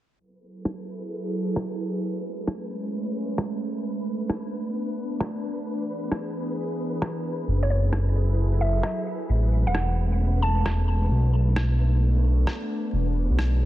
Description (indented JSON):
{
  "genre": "future garage",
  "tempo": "132 BPM",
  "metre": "4/4",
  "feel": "swing 65% on 16ths",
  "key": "F# minor",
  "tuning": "A4 = 440 Hz",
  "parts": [
    { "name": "warbly tape-like pad", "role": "sustained chords", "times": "0.6-13.7 s", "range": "E3 to A4", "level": "-30 LUFS", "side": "equal", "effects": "chorus, built-in reverb" },
    { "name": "flickering grainy texture", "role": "texture", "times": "0.6-13.7 s", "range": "B4", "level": "-39 LUFS", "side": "left 1 dB", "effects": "built-in reverb" },
    { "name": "electronic rim click", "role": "drums", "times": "0.7-13.5 s", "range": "none", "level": "-30 LUFS", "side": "equal", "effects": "overdrive" },
    { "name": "dark detuned saw bass", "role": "bass", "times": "7.5-13.7 s", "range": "E1 to B1", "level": "-21 LUFS", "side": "equal", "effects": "tube saturation" },
    { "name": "mallet-like synth pluck", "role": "melody", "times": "7.6-10.8 s", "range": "C#5 to A5", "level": "-32 LUFS", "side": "right 1 dB", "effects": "chorus, tape echo" }
  ],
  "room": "light reverb",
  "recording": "dense, heavily limited modern master, vinyl crackle, low-pass filter",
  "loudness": "-23 LUFS",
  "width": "side -14 dB against mid",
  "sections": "0.2-13.7 A section",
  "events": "filter sweep 0.2-13.7",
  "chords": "0.2 F#m9; 2.0 Amaj7; 3.8 Bm7; 5.7 E7; 7.5 F#m9; 9.3 Amaj7; 11.1 Bm7; 12.9 E7"
}